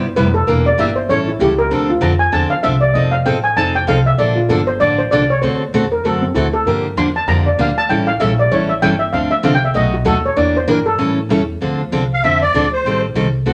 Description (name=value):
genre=acoustic string swing (jazz manouche)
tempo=194 BPM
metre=4/4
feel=swing 58% on 8ths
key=D minor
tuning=A4 = 440 Hz
part: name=steel pan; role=second line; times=0.0-11.3 s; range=C4 to C6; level=-18 LUFS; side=equal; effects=none
part: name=picked steel-string acoustic guitar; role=accompaniment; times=0.0-13.5 s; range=B2 to A4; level=-20 LUFS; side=equal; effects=none
part: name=upright bass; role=bass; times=0.0-13.5 s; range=E1 to A2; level=-22 LUFS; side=equal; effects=none
part: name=musette accordion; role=melody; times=12.1-13.0 s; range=C5 to F5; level=-17 LUFS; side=equal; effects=none
room=moderate studio reverb, RT60 0.5 s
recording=none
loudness=-15 LUFS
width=mono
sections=0.0-1.7 A section; 1.7-11.6 A section; 11.6-13.5 B section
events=steel pan solo 0.0-11.6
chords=0.5 Em7b5; 1.1 A7; 1.7 Dm9; 3.0 F7; 4.2 Bbmaj9; 5.4 D7; 6.7 Gm7; 7.9 A7; 9.1 Dm7; 9.8 B7; 10.4 Em7b5; 11.0 A7; 11.6 Dm7; 12.8 Am7b5